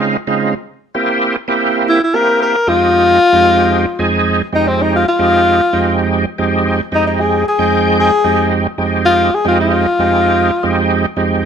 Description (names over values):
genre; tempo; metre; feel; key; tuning
blues; 113 BPM; 4/4; straight; F minor; A4 = 441 Hz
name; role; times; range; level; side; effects
overdriven tonewheel organ; accompaniment; 0.0-11.5 s; F2 to G5; -14 LUFS; right 3 dB; chorus vibrato, slow rotary speaker
breathy tenor saxophone; melody; 1.9-11.1 s; C4 to Bb4; -12 LUFS; left 2 dB; none
room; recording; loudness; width
light reverb; none; -11 LUFS; side -7 dB against mid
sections
0.0-6.9 A section; 6.9-11.5 B section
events
tenor saxophone solo 6.9-11.5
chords
0.0 Dbmaj7; 0.5 C7; 2.7 Fm9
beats
0.01 | 0.55 1.08 1.61 2.14 | 2.67 3.20 3.73 4.27 | 4.80 5.33 5.86 6.39 | 6.92 7.46 7.99 8.52 | 9.05 9.58 10.11 10.64 | 11.17